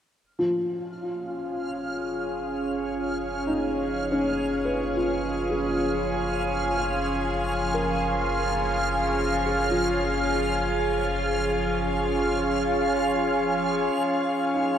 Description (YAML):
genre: ambient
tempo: 70 BPM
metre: 4/4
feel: straight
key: unclear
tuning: A4 = 440 Hz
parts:
  - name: round analog bass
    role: bass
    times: 0.2-13.9 s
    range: F#1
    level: -34 LUFS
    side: equal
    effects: none
  - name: bowed-like drone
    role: drone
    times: 1.9-14.8 s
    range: E#3 to C#4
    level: -35 LUFS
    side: equal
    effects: built-in reverb, phaser
  - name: backwards swelling texture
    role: texture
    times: 0.9-14.8 s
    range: E#6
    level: -34 LUFS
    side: right 1 dB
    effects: built-in reverb
  - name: evolving wavetable pad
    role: sustained chords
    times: 1.0-14.8 s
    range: C#4 to G#4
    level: -25 LUFS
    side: equal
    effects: phaser, built-in reverb
  - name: felt-muted upright piano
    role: arpeggios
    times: 0.4-14.8 s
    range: E#3 to G#5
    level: -30 LUFS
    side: left 1 dB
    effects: diffuse ambient delay
room: wet shimmer reverb, RT60 7.5 s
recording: cassette tape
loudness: -23 LUFS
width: side -9 dB against mid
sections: 0.2-13.9 A section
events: fade-in on analog synth bass 0.2-13.9; fade-in on synth drone 0.2-13.9; fade-out on felt piano 0.2-13.9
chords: 0.2 C#/F#; 13.9 C#